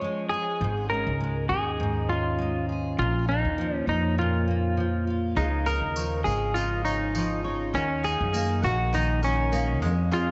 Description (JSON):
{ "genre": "acoustic pop", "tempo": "101 BPM", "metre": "4/4", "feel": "swing 55% on 16ths", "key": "unclear", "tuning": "A4 = 438 Hz", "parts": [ { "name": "semi-hollow electric guitar", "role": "melody", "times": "0.0-10.3 s", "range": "Db4 to Db5", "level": "-30 LUFS", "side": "equal", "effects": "slapback echo" }, { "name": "picked steel-string acoustic guitar", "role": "accompaniment", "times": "0.0-10.3 s", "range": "F2 to Ab4", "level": "-33 LUFS", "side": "equal", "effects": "double-tracked" }, { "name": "upright bass", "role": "bass", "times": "0.6-10.3 s", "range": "Ab1 to Gb2", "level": "-30 LUFS", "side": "equal", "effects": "none" }, { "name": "mandolin", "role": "arpeggios", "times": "5.4-10.3 s", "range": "Ab3 to Gb5", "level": "-39 LUFS", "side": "equal", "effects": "none" }, { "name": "tambourine", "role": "percussion", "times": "5.4-10.3 s", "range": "none", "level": "-45 LUFS", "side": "equal", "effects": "none" } ], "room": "moderate plate reverb, RT60 3.6 s", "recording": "nothing above 8.0 kHz", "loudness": "-26 LUFS", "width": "mono", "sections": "0.0-5.4 A section; 5.4-10.3 B section", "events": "none", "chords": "0.0 Db/F; 0.6 Absus4; 3.0 Bbm; 5.4 Dbadd9; 7.7 Ebm" }